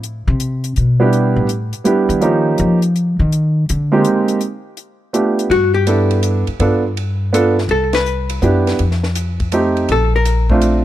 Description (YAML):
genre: jazz, small-group swing and bop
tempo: 165 BPM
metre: 3/4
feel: swing 66% on 8ths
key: G major from 5.5 s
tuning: A4 = 439 Hz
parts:
  - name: upright bass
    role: bass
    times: 0.0-10.8 s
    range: Bb1 to F3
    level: -16 LUFS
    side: left 1 dB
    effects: none
  - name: compact cocktail drum kit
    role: drums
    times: 0.0-10.7 s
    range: hi-hat, kick drum, ride cymbal, snare drum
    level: -26 LUFS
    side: left 1 dB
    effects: none
  - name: warm grand piano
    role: accompaniment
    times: 1.0-10.8 s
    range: F3 to A4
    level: -15 LUFS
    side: right 3 dB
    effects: none
  - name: vintage hollow-body jazz guitar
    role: melody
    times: 5.5-10.6 s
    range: F#4 to B4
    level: -16 LUFS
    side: left 4 dB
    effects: slapback echo
room: studio ambience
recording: dry, close 1970s-style studio recording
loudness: -13 LUFS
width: side -13 dB against mid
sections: 0.0-5.5 A section; 5.5-10.8 B section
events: upright bass solo 0.0-5.5; band accent 7.9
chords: 0.0 Cmaj7sus2; 1.1 Em7; 2.2 Eb9; 3.3 Abmaj9; 4.4 G7; 5.5 G6; 6.6 G7; 7.7 Cmaj7; 8.8 F7; 9.9 Bbmaj9